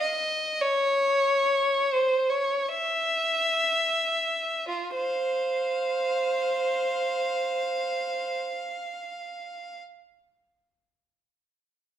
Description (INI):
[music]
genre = classical, free, expressive piece for unaccompanied violin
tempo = 24-51 BPM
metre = 3/4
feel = rubato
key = unclear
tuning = A4 = 439 Hz
[part]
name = rich violin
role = solo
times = 0.0-9.8 s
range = F4 to F5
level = -24 LUFS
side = equal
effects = none
[sound]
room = moderate recital hall reverb, RT60 1.4 s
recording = minimal, uncompressed stereo recording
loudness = -24 LUFS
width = side -10 dB against mid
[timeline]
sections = 0.0-4.7 A section; 4.7-9.8 B section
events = slowing down 0.0-4.7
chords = none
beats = 1.21 2.67 | 4.69 6.42 8.16